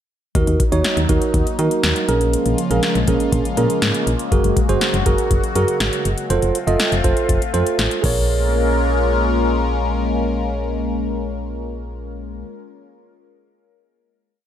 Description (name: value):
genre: synth-pop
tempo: 121 BPM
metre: 4/4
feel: straight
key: Bb minor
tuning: A4 = 445 Hz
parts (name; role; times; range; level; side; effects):
- phased analog pad; sustained chords; 0.6-12.4 s; Db3 to Bb4; -23 LUFS; left 2 dB; phaser, chorus
- solid FM bass; bass; 0.3-12.4 s; F1 to Eb3; -21 LUFS; left 1 dB; none
- electro analog drum machine; drums; 0.3-8.2 s; crash cymbal, hi-hat, kick drum, snare drum; -20 LUFS; left 1 dB; none
- tine electric piano; accompaniment; 0.4-12.5 s; Db4 to Eb5; -21 LUFS; right 4 dB; none
room: moderate recital hall reverb, RT60 1.7 s, digital ambience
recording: none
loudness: -16 LUFS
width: side -10 dB against mid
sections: 0.3-8.3 pre-chorus; 8.3-12.3 final hit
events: none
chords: 0.3 Ebm; 2.1 Bbm7; 4.3 Gbadd9; 6.3 F; 8.0 Bbm7